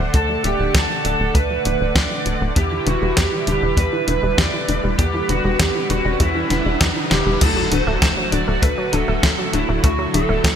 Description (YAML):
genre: synthwave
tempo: 99 BPM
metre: 4/4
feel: straight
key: unclear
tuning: A4 = 443 Hz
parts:
  - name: soft supersaw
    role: sustained chords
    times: 0.0-10.6 s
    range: D3 to F#5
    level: -25 LUFS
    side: right 2 dB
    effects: sidechain pumping
  - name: analog pluck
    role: arpeggios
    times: 0.0-10.5 s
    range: D3 to A3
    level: -26 LUFS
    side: left 3 dB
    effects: chorus, digital delay
  - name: tight sequencer bass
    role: bass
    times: 0.0-10.6 s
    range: D1 to E2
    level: -22 LUFS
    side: equal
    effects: tube saturation
  - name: lead guitar through a small cranked amp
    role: melody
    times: 0.1-10.6 s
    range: E4 to D5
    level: -22 LUFS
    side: right 1 dB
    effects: overdrive, analog chorus, ping-pong delay
  - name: clean 12-bit digital drum machine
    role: drums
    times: 0.1-10.6 s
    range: crash cymbal, hi-hat, snare drum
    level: -22 LUFS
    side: equal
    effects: gated reverb
  - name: kick drum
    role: drums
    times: 0.1-10.6 s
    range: none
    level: -22 LUFS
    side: equal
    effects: none
  - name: riser and impact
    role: sound effects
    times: 4.5-9.8 s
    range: none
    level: -28 LUFS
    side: right 1 dB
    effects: none
room: light reverb, digital ambience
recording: bright 1980s-style digital production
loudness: -16 LUFS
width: side -8 dB against mid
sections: 0.0-7.4 A section; 7.4-10.6 B section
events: filter sweep on synth arpeggio sound 0.0-7.4; riser 4.5-7.4; drum fill 7.1-7.4; impact 7.4-9.8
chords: 0.0 D; 2.6 Em7; 7.4 D